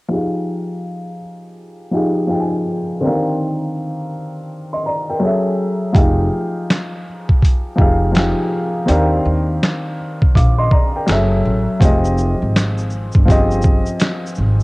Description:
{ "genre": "lo-fi hip hop", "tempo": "82 BPM", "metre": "4/4", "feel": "swing 64% on 16ths", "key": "unclear", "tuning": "A4 = 442 Hz", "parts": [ { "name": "dark upright piano", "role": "accompaniment", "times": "0.1-14.6 s", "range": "D3 to D6", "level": "-18 LUFS", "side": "equal", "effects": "cassette tape, low-pass filter" }, { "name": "boom bap sampler-style drum kit", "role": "drums", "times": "5.9-14.6 s", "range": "hi-hat, kick drum, shaker, snare drum", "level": "-14 LUFS", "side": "equal", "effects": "vintage 12-bit sampler grit" }, { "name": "upright bass", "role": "bass", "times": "6.0-14.6 s", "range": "F1 to Eb2", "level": "-17 LUFS", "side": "equal", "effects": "none" } ], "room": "light reverb, small room ambience", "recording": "home recording on cassette", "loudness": "-14 LUFS", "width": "side -23 dB against mid", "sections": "0.1-11.8 A section; 11.8-14.6 B section", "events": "filter sweep on upright piano 0.1-11.8", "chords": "0.1 Fm9; 3.0 Cm11/Eb; 5.2 F#m9; 6.0 Fm9; 8.9 Cm11/Eb; 11.1 F#m9; 11.8 Fm9" }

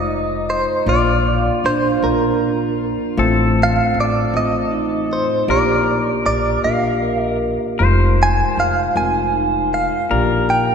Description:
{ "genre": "acoustic folk-pop ballad", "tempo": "52 BPM (dotted quarters)", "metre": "6/8", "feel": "straight", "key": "Bb major", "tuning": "A4 = 442 Hz", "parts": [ { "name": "direct-recorded clean electric guitar", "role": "melody", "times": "0.0-10.7 s", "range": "Bb4 to Ab5", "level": "-19 LUFS", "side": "right 2 dB", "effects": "tremolo" }, { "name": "pedal steel guitar", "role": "second line", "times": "0.0-10.7 s", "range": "Eb4 to C5", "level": "-24 LUFS", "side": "left 3 dB", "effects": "none" }, { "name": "tine electric piano", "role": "accompaniment", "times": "0.0-10.7 s", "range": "F1 to D5", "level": "-22 LUFS", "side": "left 4 dB", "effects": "none" }, { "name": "vibraphone with soft mallets", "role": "arpeggios", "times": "0.0-10.7 s", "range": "D4 to Bb4", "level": "-24 LUFS", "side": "right 6 dB", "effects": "none" }, { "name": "upright bass", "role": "bass", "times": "0.0-10.7 s", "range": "F1 to Bb1", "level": "-22 LUFS", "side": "equal", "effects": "none" } ], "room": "wet church reverb, RT60 3.0 s", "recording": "recorded in a church or concert hall", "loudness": "-15 LUFS", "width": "side -6 dB against mid", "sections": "0.0-10.7 A section", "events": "none", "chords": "0.0 Fm7; 0.9 Bb; 3.2 F/A; 5.5 Bb; 7.8 Fm7; 10.1 Bb" }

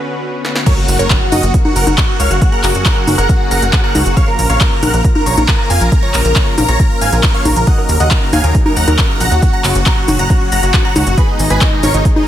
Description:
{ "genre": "uplifting trance", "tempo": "137 BPM", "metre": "4/4", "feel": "straight", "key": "F# major", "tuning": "A4 = 439 Hz", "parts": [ { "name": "filtered supersaw swell", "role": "sustained chords", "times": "0.0-12.3 s", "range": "A#2 to B4", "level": "-22 LUFS", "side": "equal", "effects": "sidechain pumping" }, { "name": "big-room dance drum kit", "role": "drums", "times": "0.4-12.2 s", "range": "congas, crash cymbal, handclaps, hi-hat, shaker, snare drum", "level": "-17 LUFS", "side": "left 1 dB", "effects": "high-pass filter on hats, high-pass filter on perc, high-pass filter on snare, high-pass filter on cymbals, high-pass filter on room" }, { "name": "big supersaw lead", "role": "melody", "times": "0.7-12.3 s", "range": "D#4 to A#5", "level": "-16 LUFS", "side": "equal", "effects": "phaser, sidechain pumping, digital delay" }, { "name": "electronic kick drum", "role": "drums", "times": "0.7-12.1 s", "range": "none", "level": "-14 LUFS", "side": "equal", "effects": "high-pass filter on kick" }, { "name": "impact", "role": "sound effects", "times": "0.7-2.4 s", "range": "none", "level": "-24 LUFS", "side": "equal", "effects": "none" }, { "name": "plucky analog bass", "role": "bass", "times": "0.9-12.0 s", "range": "F#1 to E#2", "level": "-15 LUFS", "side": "equal", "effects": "sidechain pumping" } ], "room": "little or no reverb", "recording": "none", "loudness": "-10 LUFS", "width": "side -11 dB against mid", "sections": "0.7-12.3 A section", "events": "break 0.0-0.7; drum fill 0.4; drop 0.7-12.3; impact 0.7-2.4", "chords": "0.0 Bmadd9; 0.7 F#; 4.2 A#m; 7.7 D#m7; 9.4 F#; 11.2 G#m" }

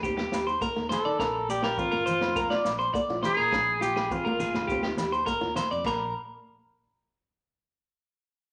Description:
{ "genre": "highlife guitar band", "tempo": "103 BPM", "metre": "4/4", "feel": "straight", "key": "Bb major", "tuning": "A4 = 440 Hz", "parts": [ { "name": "clean electric guitar", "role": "arpeggios", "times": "0.0-6.1 s", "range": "F4 to D5", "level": "-31 LUFS", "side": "equal", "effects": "phaser" }, { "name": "modern bright fingered electric bass", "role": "bass", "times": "0.0-6.1 s", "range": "G1 to Eb3", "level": "-43 LUFS", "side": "equal", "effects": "none" }, { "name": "vintage drum kit", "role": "drums", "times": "0.0-6.0 s", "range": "crash cymbal, kick drum, snare drum", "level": "-38 LUFS", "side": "equal", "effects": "none" }, { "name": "maracas", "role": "percussion", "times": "0.0-6.1 s", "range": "none", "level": "-52 LUFS", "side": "equal", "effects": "none" }, { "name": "flamenco guitar", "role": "accompaniment", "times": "0.1-6.0 s", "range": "Bb3 to F4", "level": "-39 LUFS", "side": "equal", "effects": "none" }, { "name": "congas", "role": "percussion", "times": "0.2-6.1 s", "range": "none", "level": "-41 LUFS", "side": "equal", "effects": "none" }, { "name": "agogo bells", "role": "percussion", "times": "0.3-6.0 s", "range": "none", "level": "-40 LUFS", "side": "equal", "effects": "none" }, { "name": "bright alto saxophone", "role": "melody", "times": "0.9-5.0 s", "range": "F4 to A4", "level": "-30 LUFS", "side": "equal", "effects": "none" } ], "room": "moderate large studio reverb, RT60 1.0 s", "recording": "none", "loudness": "-27 LUFS", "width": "mono", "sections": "0.0-5.9 A section; 5.9-8.2 B section", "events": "alto saxophone solo 0.0-5.9", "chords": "0.0 Eb; 1.2 Bb; 3.5 Bb7; 4.7 Eb; 5.9 N.C." }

